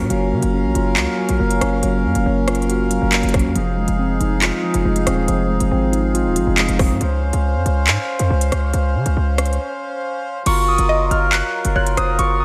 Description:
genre	hip hop, drill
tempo	139 BPM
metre	4/4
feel	half-time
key	unclear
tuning	A4 = 442 Hz
part	mellow tine electric piano	accompaniment	0.0-7.0 s	F3 to Gb4	-22 LUFS	equal	low-pass filter
part	accordion	sustained chords	0.0-12.4 s	Gb3 to F5	-27 LUFS	equal	none
part	hard-hitting 808-style bass	bass	0.0-12.4 s	Eb1 to Db3	-22 LUFS	equal	none
part	drill drum kit	drums	0.1-12.3 s	crash cymbal, handclaps, hi-hat, kick drum, rim click	-24 LUFS	equal	none
part	concert harp	melody	10.5-12.4 s	Db6 to Gb6	-21 LUFS	equal	low-pass filter, delay
part	mallet-like synth pluck	second line	10.9-12.2 s	C5 to Eb5	-27 LUFS	equal	chorus, delay
room	moderate lush hall reverb, RT60 1.9 s, digital ambience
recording	dreamy mix soaked in reverb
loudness	-18 LUFS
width	mono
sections	0.0-10.5 A section; 10.5-12.4 B section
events	break 9.6-10.5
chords	0.0 Gbmaj7; 3.6 Fm7; 7.0 Dbmaj7; 10.5 Gbmaj7

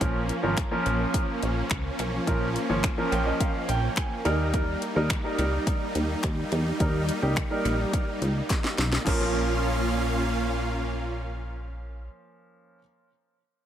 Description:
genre	dance-pop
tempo	106 BPM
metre	4/4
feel	straight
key	Bb dorian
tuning	A4 = 438 Hz
part	clear baby grand piano	accompaniment	0.0-12.8 s	F3 to Bb5	-29 LUFS	right 1 dB	sidechain pumping, tape echo
part	supersaw chords	sustained chords	0.0-12.1 s	Bb2 to F5	-30 LUFS	right 1 dB	sidechain pumping
part	plucky analog bass	bass	0.0-12.1 s	Ab1 to E2	-28 LUFS	equal	sidechain pumping
part	house drum kit	drums	0.0-9.2 s	crash cymbal, finger snaps, hi-hat, kick drum, snare drum	-28 LUFS	equal	overdrive, tape echo
part	group handclap	percussion	0.6-9.3 s	none	-40 LUFS	left 5 dB	none
room	light reverb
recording	echo-heavy mix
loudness	-24 LUFS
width	side -10 dB against mid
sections	0.0-9.1 A section; 9.1-11.3 B section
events	grand piano fill 2.8-4.5; drum fill 8.5-9.1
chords	0.0 Bbm; 4.3 Eb; 9.1 Bbm

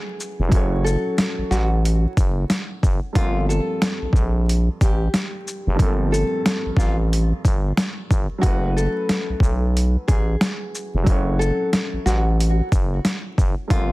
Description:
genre	hip hop, boom-bap hip-hop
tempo	91 BPM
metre	4/4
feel	swing 61% on 16ths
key	unclear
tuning	A4 = 440 Hz
part	nylon-string guitar	melody	0.0-13.9 s	F4 to A4	-27 LUFS	left 1 dB	high-pass filter, low-pass filter, digital delay
part	dark upright piano	accompaniment	0.0-13.9 s	G2 to C#5	-29 LUFS	right 2 dB	cassette tape, high-pass filter, low-pass filter
part	boom bap sampler-style drum kit	drums	0.2-13.9 s	hi-hat, kick drum, shaker, snare drum	-20 LUFS	equal	overdrive
part	growling FM bass	bass	0.4-13.9 s	E#1 to B1	-20 LUFS	equal	none
room	digital ambience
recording	dense, heavily limited modern master, vinyl crackle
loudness	-18 LUFS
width	side -20 dB against mid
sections	0.0-13.9 A section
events	none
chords	0.0 F#m11; 3.2 Gm11; 8.4 F#m11

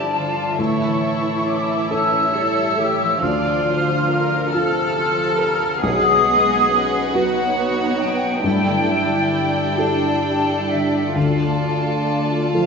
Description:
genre	cinematic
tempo	46 BPM (dotted quarters)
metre	6/8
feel	rubato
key	D minor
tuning	A4 = 440 Hz
part	warm chamber violin section	melody	0.0-12.7 s	E5 to A5	-28 LUFS	left 2 dB	none
part	flute section	second line	0.0-12.7 s	E5 to F6	-21 LUFS	left 1 dB	none
part	rich studio violin section	second line	0.0-12.7 s	G4 to F5	-26 LUFS	left 2 dB	none
part	dark symphonic viola section	accompaniment	0.0-12.7 s	C3 to F4	-26 LUFS	right 2 dB	none
part	felt-muted upright piano	accompaniment	0.0-12.7 s	B1 to B4	-25 LUFS	left 1 dB	none
part	concert harp	arpeggios	0.0-12.7 s	G2 to A5	-27 LUFS	left 4 dB	none
part	warm symphonic cello section	bass	0.0-12.7 s	C#4 to A4	-24 LUFS	right 2 dB	none
part	dark French horn section	sustained chords	12.6-12.7 s	F3	-21 LUFS	right 2 dB	none
room	wet recital hall reverb, RT60 1.6 s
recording	recorded in a church or concert hall, nothing above 7.8 kHz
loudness	-16 LUFS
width	side -5 dB against mid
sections	0.0-12.7 A section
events	none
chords	0.0 Gsus2; 0.6 A; 3.2 Dm; 5.8 Bsus2; 8.4 Gsus2; 11.2 Dm

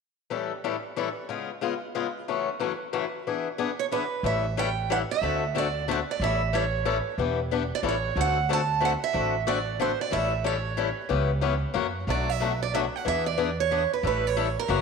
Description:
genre	acoustic string swing (jazz manouche)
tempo	184 BPM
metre	3/4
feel	swing 60% on 8ths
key	A mixolydian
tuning	A4 = 440 Hz
part	picked swing-style acoustic guitar	accompaniment	0.3-14.8 s	F#2 to A4	-28 LUFS	left 8 dB	none
part	picked steel-string acoustic guitar	melody	3.8-14.8 s	Bb4 to A5	-27 LUFS	right 10 dB	none
part	upright bass	bass	4.2-14.8 s	E1 to F#2	-30 LUFS	right 1 dB	none
room	moderate echo chamber reverb, RT60 1.8 s, small room ambience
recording	1960s-style stereo with parts hard left and right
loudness	-24 LUFS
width	side -5 dB against mid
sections	0.3-4.2 A section; 4.2-14.8 B section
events	none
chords	0.3 A7; 1.3 C#7; 2.3 F#m7; 3.3 E7; 4.2 A7; 5.2 D7; 6.2 A7; 7.2 Em7; 7.8 A7; 8.2 D7; 10.1 A7; 11.1 C#m7b5; 11.8 F#7; 12.1 Bm7; 13.1 E7; 14.0 A7

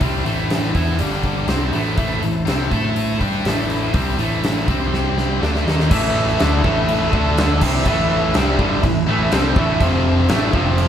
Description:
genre	hard rock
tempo	123 BPM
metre	4/4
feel	straight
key	A minor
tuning	A4 = 440 Hz
part	tonewheel organ	sustained chords	0.0-10.9 s	F3 to C6	-30 LUFS	right 1 dB	none
part	heavy high-gain guitar	riff	0.0-10.9 s	F2 to A4	-24 LUFS	left 8 dB	distortion
part	high-gain distorted guitar	riff	0.0-10.9 s	F2 to A4	-24 LUFS	right 7 dB	distortion
part	overdriven picked electric bass	bass	0.0-10.9 s	F1 to A2	-21 LUFS	equal	none
part	huge arena drum kit	drums	0.0-10.9 s	crash cymbal, hi-hat, kick drum, snare drum	-21 LUFS	equal	none
part	distorted electric guitar	riff	5.9-10.9 s	F2 to D4	-21 LUFS	right 1 dB	overdrive
room	moderate large studio reverb, RT60 1.3 s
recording	band playing live in one room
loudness	-16 LUFS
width	side -9 dB against mid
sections	0.0-5.9 A section; 5.9-10.9 B section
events	drum fill 4.9-5.9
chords	0.0 Am; 1.0 G5; 1.5 Am; 4.7 C5; 5.4 Am; 5.9 A5; 7.1 D5; 7.6 Am; 9.8 F5

